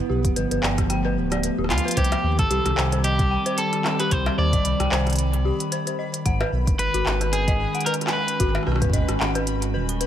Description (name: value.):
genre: IDM.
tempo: 112 BPM.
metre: 4/4.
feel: swing 56% on 16ths.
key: unclear.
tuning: A4 = 439 Hz.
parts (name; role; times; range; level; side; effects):
warbly tape-like pad; sustained chords; 0.0-10.1 s; Eb3 to Cb5; -28 LUFS; equal; chorus, built-in reverb.
pulsing gated texture; texture; 0.0-10.1 s; B4 to B5; -38 LUFS; left 1 dB; chorus, built-in reverb.
dark detuned synth bell; arpeggios; 0.1-10.1 s; Gb4 to B5; -29 LUFS; left 2 dB; chorus, tape echo.
dark detuned saw bass; bass; 0.1-10.1 s; D1 to Eb2; -24 LUFS; equal; none.
electronic kick drum; drums; 0.2-9.1 s; none; -22 LUFS; equal; overdrive.
organic electronic drum kit; drums; 0.2-10.1 s; cowbell, handclaps, hi-hat, rim click; -28 LUFS; equal; overdrive.
electric guitar at the edge of break-up; melody; 1.7-8.6 s; F4 to D5; -26 LUFS; equal; digital delay.
room: light reverb.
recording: none.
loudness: -20 LUFS.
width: side -10 dB against mid.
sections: 0.0-2.0 A section; 2.0-10.1 B section.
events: filter sweep on synth bell 0.0-2.0; drum fill 1.7; band accent 1.7.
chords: 0.0 G7; 2.0 Cm; 6.3 Abm7.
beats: 0.36 0.90 1.44 | 1.97 2.51 3.04 3.58 | 4.11 4.65 5.18 5.72 | 6.26 6.79 7.33 7.86 | 8.40 8.94 9.47 10.01.